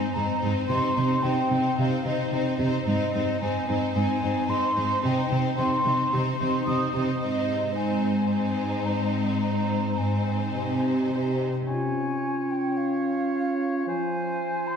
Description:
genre	cinematic, heroic adventure film score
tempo	110 BPM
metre	4/4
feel	straight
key	Ab major, Db lydian from 11.7 s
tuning	A4 = 438 Hz
part	rich chamber violin section	melody	0.0-11.4 s	C5	-34 LUFS	left 4 dB	none
part	mellow hollow silver concert flute	second line	0.0-14.8 s	Eb5 to Eb6	-29 LUFS	equal	none
part	warm symphonic violin section	second line	0.0-11.4 s	Eb4	-33 LUFS	left 3 dB	none
part	rich symphonic viola section	accompaniment	0.0-11.4 s	C4	-31 LUFS	right 1 dB	none
part	rich symphonic cello section	bass	0.2-11.7 s	Ab2 to C3	-26 LUFS	right 1 dB	none
part	clear oboe	second line	11.7-14.8 s	C5 to Db5	-36 LUFS	right 1 dB	none
part	warm clarinet	second line	11.7-14.8 s	F4	-32 LUFS	right 2 dB	none
part	mellow French horn section	sustained chords	11.7-14.8 s	F3 to Db4	-28 LUFS	equal	none
room	wet concert hall reverb, RT60 2.3 s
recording	heard from further back in the room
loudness	-23 LUFS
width	side -7 dB against mid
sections	0.0-11.7 A section; 11.7-14.8 B section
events	none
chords	0.0 Ab; 0.7 Cm; 2.9 Ab; 5.0 Cm; 7.2 Ab; 11.7 Db; 13.9 Fm

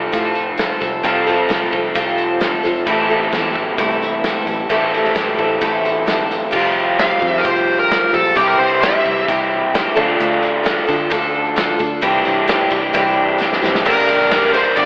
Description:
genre	folk rock and heartland rock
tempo	131 BPM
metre	4/4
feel	straight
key	unclear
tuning	A4 = 439 Hz
part	picked twelve-string acoustic guitar	accompaniment	0.0-14.9 s	G2 to Bb4	-17 LUFS	equal	none
part	crunchy overdriven guitar	riff	0.0-14.9 s	G2 to A4	-18 LUFS	equal	slapback echo
part	fingered electric bass	bass	0.0-14.9 s	F1 to D3	-32 LUFS	equal	none
part	natural country drum kit	drums	0.1-14.9 s	crash cymbal, hi-hat, kick drum, ride cymbal, snare drum	-22 LUFS	equal	none
part	tambourine	percussion	0.1-6.5, 10.3-14.8 s	none	-38 LUFS	equal	none
part	smooth overdriven lead guitar	melody	7.0-9.2, 13.9-14.9 s	G4 to F5	-16 LUFS	equal	tape echo
room	wet lush hall reverb, RT60 2.0 s, small room ambience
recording	big arena sound, telephone sound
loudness	-13 LUFS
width	side -32 dB against mid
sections	0.0-6.5 A section; 6.5-13.9 B section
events	drum fill 13.4-13.9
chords	0.0 F/C; 2.9 Am7; 6.5 Fsus2; 8.4 C; 10.0 Dm; 12.0 Cadd9; 13.9 Gm

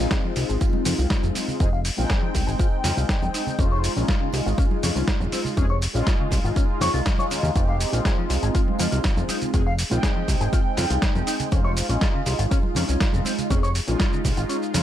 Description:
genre	nu-disco, nu disco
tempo	121 BPM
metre	4/4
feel	straight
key	F minor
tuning	A4 = 439 Hz
part	mellow synth brass	accompaniment	0.0-14.8 s	Ab3 to G5	-27 LUFS	equal	chorus, phaser, tape echo
part	electric guitar with an envelope filter	riff	0.0-14.8 s	Db3 to F5	-31 LUFS	left 4 dB	lush chorus, low-pass filter, tape echo
part	fat analog bass	bass	0.0-14.8 s	F1 to F2	-24 LUFS	equal	none
part	tambourine and congas	percussion	0.0-14.8 s	none	-34 LUFS	right 4 dB	none
part	dusty soul sampler-style drum kit	drums	0.1-14.8 s	hi-hat, shaker, snare drum	-28 LUFS	equal	overdrive
part	electronic kick drum	drums	0.1-14.3 s	none	-22 LUFS	equal	none
room	little or no reverb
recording	none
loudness	-20 LUFS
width	side -11 dB against mid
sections	0.0-14.8 A section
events	filter sweep on clean electric guitar 0.0-14.8; kick drops out 14.5-14.8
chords	0.0 Fm7; 3.6 Dbmaj7/F; 7.6 Fm7; 11.5 Dbmaj7/F

